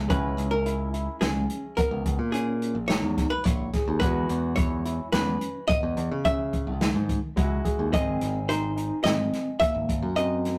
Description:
progressive instrumental, band music in an uneven meter; 107 BPM; 7/4; straight; C# dorian; A4 = 438 Hz
bright grand piano; accompaniment; 0.0-10.6 s; D#3 to G#4; -40 LUFS; equal
overdriven tine electric piano; arpeggios; 0.0-10.6 s; D#3 to G#4; -35 LUFS; equal; fast tremolo
modern bright picked electric bass; bass; 0.0-10.6 s; G#1 to C#3; -31 LUFS; equal
archtop guitar, miked and amplified; melody; 0.1-10.6 s; G#4 to E5; -31 LUFS; equal
open jazz drum kit; drums; 0.1-10.6 s; hi-hat, kick drum, snare drum; -30 LUFS; equal
moderate small room reverb, RT60 0.5 s; rough rehearsal-room recording; -26 LUFS; mono
0.1-10.6 A section
0.1 C#m; 4.0 Eadd9; 7.9 G#

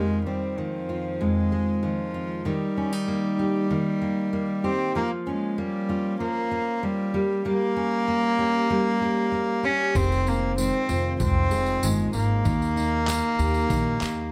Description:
acoustic pop; 96 BPM; 4/4; straight; F minor; A4 = 440 Hz
clear cello; melody; 0.0-14.3 s; F3 to Db4; -28 LUFS; equal
fingerpicked steel-string acoustic guitar; accompaniment; 0.0-14.3 s; F2 to G4; -30 LUFS; equal
nylon-string guitar; arpeggios; 0.0-14.3 s; Eb3 to Ab4; -37 LUFS; equal
upright bass; bass; 10.0-14.3 s; F1 to Eb2; -29 LUFS; equal
trip hop sampler-style drum kit; drums; 10.0-14.2 s; handclaps, kick drum; -32 LUFS; equal; overdrive
tambourine; percussion; 10.0-14.2 s; -41 LUFS; equal
moderate studio ambience, RT60 0.5 s; -25 LUFS; mono
0.0-14.3 A section
0.0 Fm7; 2.5 Eb; 5.0 Bbm/F; 7.1 Gdim; 10.0 Fm7; 12.5 Eb

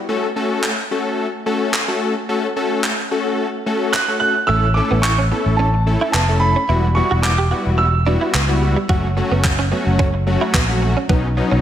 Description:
dance-pop; 109 BPM; 4/4; straight; A4 = 440 Hz
big bright polysynth; accompaniment; 0.1-11.6 s; F#3 to A4; -20 LUFS; left 2 dB; chorus, sidechain pumping
crisp 8-bit digital drum machine; drums; 0.6-11.2 s; handclaps, kick drum; -21 LUFS; equal; overdrive
dark grand piano; melody; 3.9-8.3 s; A5 to F#6; -20 LUFS; right 3 dB; tape echo, slapback echo
direct-recorded clean electric guitar; riff; 4.5-11.6 s; G3 to G4; -25 LUFS; right 4 dB; ensemble chorus, slapback echo
fingered electric bass; bass; 4.5-11.6 s; E1 to C#2; -18 LUFS; equal; sidechain pumping
moderate lush hall reverb, RT60 1.7 s; big arena sound; -15 LUFS; side -10 dB against mid
0.0-11.6 A section
0.1 F#m; 4.5 A; 6.7 Emadd9; 8.9 F#m; 11.1 Badd9

